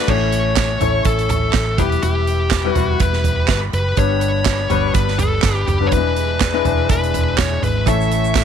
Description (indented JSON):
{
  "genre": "piano-driven pop",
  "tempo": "123 BPM",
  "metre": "4/4",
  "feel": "swing 56% on 16ths",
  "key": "E dorian",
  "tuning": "A4 = 440 Hz",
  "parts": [
    { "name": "high-gain lead guitar", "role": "melody", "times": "0.0-8.4 s", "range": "G4 to E5", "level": "-21 LUFS", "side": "left 1 dB", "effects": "distortion" },
    { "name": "clear baby grand piano", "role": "accompaniment", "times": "0.0-8.4 s", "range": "B1 to C#5", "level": "-22 LUFS", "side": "left 13 dB", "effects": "none" },
    { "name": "warm studio string section", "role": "sustained chords", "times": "0.1-8.4 s", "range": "D4 to C#6", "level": "-30 LUFS", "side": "left 2 dB", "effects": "none" },
    { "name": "vintage muted fingered electric bass", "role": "bass", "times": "0.1-8.4 s", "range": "E1 to A1", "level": "-20 LUFS", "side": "right 1 dB", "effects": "none" },
    { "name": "modern studio drum kit", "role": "drums", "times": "0.1-8.4 s", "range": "crash cymbal, handclaps, hi-hat, kick drum, snare drum, toms", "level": "-20 LUFS", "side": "right 4 dB", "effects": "none" },
    { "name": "direct-recorded clean electric guitar", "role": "riff", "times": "7.9-8.4 s", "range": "A2 to A4", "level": "-23 LUFS", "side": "right 15 dB", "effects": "spring reverb" },
    { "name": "tube shaker", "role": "percussion", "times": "7.9-8.4 s", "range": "none", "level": "-34 LUFS", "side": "right 22 dB", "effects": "none" }
  ],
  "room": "small room ambience",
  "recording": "1960s-style stereo with parts hard left and right",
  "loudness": "-15 LUFS",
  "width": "side -8 dB against mid",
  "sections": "0.1-8.4 A section",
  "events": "none",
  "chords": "0.1 A; 1.8 Em; 4.0 G; 5.9 E7; 7.9 A"
}